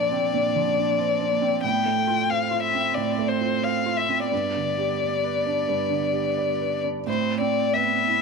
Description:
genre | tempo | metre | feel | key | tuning
neoclassical piano and strings | 90 BPM | 4/4 | rubato | unclear | A4 = 440 Hz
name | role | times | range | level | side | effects
muted violin | melody | 0.0-8.2 s | C5 to G5 | -23 LUFS | left 8 dB | none
muted cello | second line | 0.0-8.2 s | A3 to D4 | -34 LUFS | right 14 dB | none
felt-muted upright piano | accompaniment | 0.0-8.2 s | G2 to D5 | -26 LUFS | right 12 dB | none
room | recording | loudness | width
light reverb, studio ambience | 1960s-style stereo with parts hard left and right | -21 LUFS | side -4 dB against mid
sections
0.0-7.1 A section; 7.1-8.2 A section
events
none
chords
0.0 Bbadd9; 1.6 F/A; 4.3 G; 7.1 Amadd9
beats
0.34 0.99 | 1.64 2.30 2.96 3.63 | 4.32 5.01 5.69 6.38 | 7.07 7.74

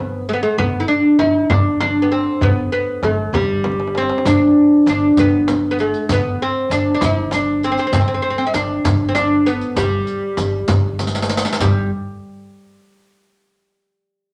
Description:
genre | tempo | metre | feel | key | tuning
Persian modal ensemble | 65 BPM (dotted quarters) | 6/8 | straight | G dastgah chahargah | A4 = 442 Hz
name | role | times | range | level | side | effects
oud | melody | 0.0-11.9 s | G3 to Eb4+45c | -18 LUFS | equal | none
upright bass | bass | 0.0-11.9 s | G1 | -27 LUFS | equal | none
tombak | percussion | 0.3-11.9 s | none | -25 LUFS | equal | none
frame drum | percussion | 0.6-11.9 s | none | -27 LUFS | equal | none
riq | percussion | 4.3-11.9 s | none | -27 LUFS | equal | none
room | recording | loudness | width
wet club reverb, RT60 0.9 s | none | -17 LUFS | mono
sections
0.0-11.6 A section; 11.6-13.4 B section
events
drum fill 3.6-4.3, 11.0-11.6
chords
none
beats
| 0.58 1.50 | 2.42 3.34 | 4.25 5.17 | 6.09 7.01 | 7.93 8.85 | 9.77 10.69 | 11.61

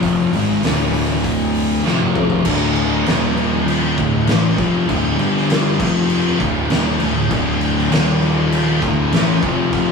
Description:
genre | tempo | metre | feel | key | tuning
stoner and doom metal | 99 BPM | 4/4 | straight | unclear | A4 = 440 Hz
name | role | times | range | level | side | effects
thick fuzz guitar | riff | 0.0-9.9 s | D2 to A3 | -20 LUFS | left 7 dB | distortion
thick fuzz guitar | riff | 0.0-9.9 s | D2 to A3 | -20 LUFS | right 4 dB | distortion
fuzz fingered electric bass | bass | 0.0-9.9 s | D1 to A1 | -23 LUFS | left 1 dB | overdrive
oversized low-tuned drum kit | drums | 0.0-9.9 s | crash cymbal, hi-hat, kick drum, snare drum, toms | -20 LUFS | left 1 dB | none
overdriven electric guitar | riff | 7.3-9.9 s | D2 to A3 | -24 LUFS | left 2 dB | none
room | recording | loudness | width
moderate studio reverb, RT60 0.6 s | rough rehearsal-room recording, studio reverb | -14 LUFS | side -5 dB against mid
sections
0.0-2.5 A section; 2.5-9.9 B section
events
drum fill 1.9-2.5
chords
0.0 Dm; 1.9 F5; 2.5 D5; 3.1 Eb5; 4.0 Dm; 5.2 G5; 5.8 F5; 6.4 D5; 7.9 Eb5; 8.8 Dm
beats
| 0.03 0.64 1.25 1.85 | 2.46 3.06 3.67 4.28 | 4.88 5.49 6.09 6.70 | 7.30 7.91 8.51 9.12 | 9.73

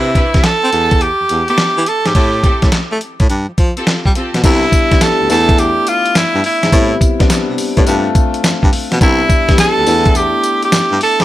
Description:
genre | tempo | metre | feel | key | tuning
R&B, new jack swing | 105 BPM | 4/4 | swing 67% on 16ths | unclear | A4 = 440 Hz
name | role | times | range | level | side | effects
bright tenor saxophone | melody | 0.0-11.2 s | E4 to A4 | -14 LUFS | right 1 dB | none
rich studio string section | stabs | 0.0-4.4 s | B3 to B4 | -24 LUFS | equal | none
breathy baritone saxophone | bass | 0.0-11.2 s | C2 to C4 | -18 LUFS | equal | none
dusty soul sampler-style drum kit | drums | 0.2-11.2 s | crash cymbal, handclaps, hi-hat, kick drum, snare drum, tambourine | -13 LUFS | equal | none
clear concert grand piano | accompaniment | 4.4-11.2 s | G3 to G4 | -17 LUFS | left 4 dB | none
room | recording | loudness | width
studio ambience | none | -10 LUFS | side -14 dB against mid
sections
0.0-4.4 A section; 4.4-11.2 B section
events
none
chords
0.0 Cmaj9; 0.7 Esus4; 2.2 Am7; 3.3 G9sus4; 4.4 Cmaj9; 5.3 E7sus4; 6.7 Am7; 7.9 G9sus4; 9.0 Cmaj9; 9.9 E7sus4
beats
0.44 1.01 1.58 | 2.15 2.72 3.29 3.87 | 4.44 5.01 5.58 6.15 | 6.72 7.29 7.87 8.44 | 9.01 9.58 10.15 10.72

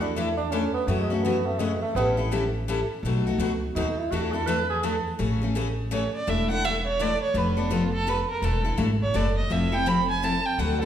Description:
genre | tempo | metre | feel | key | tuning
acoustic string swing (jazz manouche) | 167 BPM | 3/4 | swing 61% on 8ths | A major | A4 = 445 Hz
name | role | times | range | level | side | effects
mellow tenor saxophone | second line | 0.0-5.1 s | G#3 to B4 | -28 LUFS | right 3 dB | none
picked steel-string acoustic guitar | accompaniment | 0.0-10.9 s | B2 to B4 | -27 LUFS | left 3 dB | none
upright bass | bass | 0.0-10.9 s | E1 to F#2 | -28 LUFS | equal | none
warm violin | melody | 5.9-10.9 s | D4 to B5 | -26 LUFS | right 3 dB | none
room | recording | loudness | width
wet recital hall reverb, RT60 1.4 s | recorded in a church or concert hall | -23 LUFS | side -10 dB against mid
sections
0.0-5.2 A section; 5.2-10.9 A section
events
tenor saxophone solo 0.0-5.2; violin solo 5.2-10.9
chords
0.0 E7sus4; 0.9 F#m7; 2.0 A7; 3.0 B7; 4.1 E7sus4; 5.2 Amaj7; 6.3 E7sus4; 7.4 Dm6/F; 8.4 E7sus4; 9.5 Fmaj7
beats
0.16 0.52 | 0.88 1.24 1.60 | 1.96 2.32 2.68 | 3.04 3.40 3.76 | 4.12 4.47 4.83 | 5.19 5.55 5.91 | 6.27 6.63 6.99 | 7.35 7.71 8.07 | 8.43 8.79 9.15 | 9.51 9.87 10.23 | 10.59

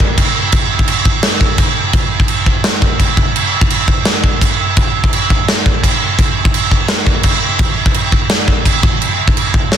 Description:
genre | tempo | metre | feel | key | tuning
metal | 170 BPM | 4/4 | straight | none | none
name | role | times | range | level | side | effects
big rock drum kit | drums | 0.0-9.8 s | crash cymbal, kick drum, snare drum | -11 LUFS | equal | none
room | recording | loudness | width
little or no reverb | dense, heavily limited modern master | -11 LUFS | side -9 dB against mid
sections
0.0-9.8 A section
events
none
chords
none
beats
0.18 | 0.53 0.88 1.24 1.59 | 1.94 2.30 2.65 3.00 | 3.36 3.71 4.06 4.42 | 4.77 5.12 5.48 5.83 | 6.18 6.54 6.89 7.24 | 7.59 7.95 8.30 8.65 | 9.01 9.36 9.72

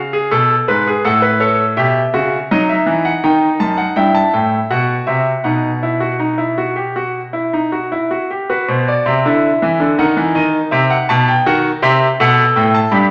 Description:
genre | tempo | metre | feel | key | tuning
classical, baroque-style 3-part fugue for grand piano | 81 BPM | 4/4 | straight | E minor | A4 = 440 Hz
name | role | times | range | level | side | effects
clear concert grand piano | solo | 0.0-13.1 s | F#2 to B5 | -15 LUFS | equal | none
room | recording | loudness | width
wet stone room reverb, RT60 1.3 s | none | -15 LUFS | mono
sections
0.0-8.5 A section; 8.5-13.1 B section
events
none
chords
0.0 C#7; 1.0 F#m/A; 2.5 F#m6; 4.0 Em/G; 5.5 B; 8.5 E5; 10.0 B/D#; 11.5 B7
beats
0.31 1.04 1.77 | 2.50 3.23 3.97 4.71 | 5.46 6.22 6.98 7.74 | 8.49 9.24 9.99 10.73 | 11.47 12.20 12.93

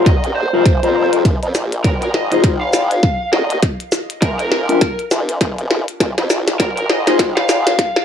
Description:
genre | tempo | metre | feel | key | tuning
glitch hop | 101 BPM | 4/4 | swing 59% on 16ths | F minor | A4 = 439 Hz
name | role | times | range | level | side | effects
mellow electric guitar | stabs | 0.0-7.3 s | D4 to C5 | -18 LUFS | left 4 dB | sidechain pumping, dub echo
formant-sweep wobble bass | bass | 0.0-7.8 s | Eb1 to F2 | -20 LUFS | equal | chorus, tube saturation, high-pass filter
lead guitar through a small cranked amp | melody | 0.1-8.0 s | Bb4 to F5 | -22 LUFS | equal | overdrive, dub echo
electronic kick drum | drums | 0.1-7.9 s | none | -17 LUFS | equal | small room ambience
glitchy drum kit | drums | 0.1-8.0 s | hi-hat, rim click, shaker, snare drum | -18 LUFS | equal | small room ambience
room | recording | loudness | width
moderate studio reverb, RT60 0.6 s | dark, warm production, high-pass filter | -14 LUFS | side -8 dB against mid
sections
0.0-8.0 A section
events
build-up 0.0-8.0; drum fill 0.0-8.0; filter sweep 0.0-8.0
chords
0.0 Eb6; 1.3 Fm7; 3.6 Gm7/F (rootless); 6.0 Fm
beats
0.06 0.66 | 1.25 1.85 2.44 3.03 | 3.63 4.22 4.82 5.41 | 6.00 6.60 7.19 7.79

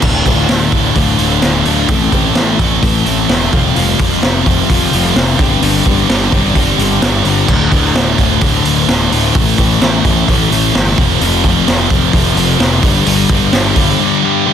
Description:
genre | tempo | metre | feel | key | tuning
quiet-loud alternative rock | 129 BPM | 4/4 | straight | D minor | A4 = 440 Hz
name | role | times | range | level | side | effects
twelve-string electric guitar | arpeggios | 0.0-7.5 s | D2 to A4 | -21 LUFS | left 5 dB | analog chorus
scooped high-gain guitar | riff | 0.0-14.5 s | D2 to A3 | -15 LUFS | right 15 dB | distortion
sludgy distorted guitar | riff | 0.0-14.5 s | D2 to A3 | -16 LUFS | left 12 dB | overdrive
fuzz picked electric bass | bass | 0.0-13.9 s | D1 to A1 | -17 LUFS | right 1 dB | overdrive
raw garage drum kit | drums | 0.0-13.9 s | crash cymbal, hi-hat, kick drum, snare drum | -14 LUFS | equal | none
room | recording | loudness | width
small room ambience | dense, heavily limited modern master | -9 LUFS | side -8 dB against mid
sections
0.0-14.5 A section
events
none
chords
0.0 Dm; 1.9 Am; 3.5 Fsus2; 5.4 Gsus4; 7.5 D5; 9.3 A5; 11.0 F5; 12.8 G5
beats
| 0.03 0.49 0.96 1.43 | 1.89 2.36 2.83 3.29 | 3.76 4.22 4.69 5.16 | 5.62 6.09 6.55 7.02 | 7.49 7.95 8.42 8.88 | 9.35 9.81 10.28 10.74 | 11.21 11.67 12.14 12.60 | 13.07 13.53 14.00 14.46

